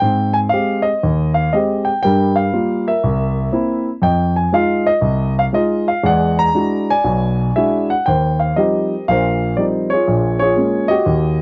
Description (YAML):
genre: solo jazz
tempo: 120 BPM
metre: 4/4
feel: swing 66% on 8ths, rubato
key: Eb major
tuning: A4 = 441 Hz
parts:
  - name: warm concert grand piano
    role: solo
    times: 0.0-11.4 s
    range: Bb1 to Bb5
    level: -16 LUFS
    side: equal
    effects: none
room: light reverb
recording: dry, close 1970s-style studio recording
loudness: -17 LUFS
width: mono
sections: 0.0-8.1 A section; 8.1-11.4 B section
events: none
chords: 0.0 Abmaj7; 2.0 Gm7; 3.0 C7; 4.0 Fm7; 6.0 E9; 8.1 Eb69; 10.1 Bbm7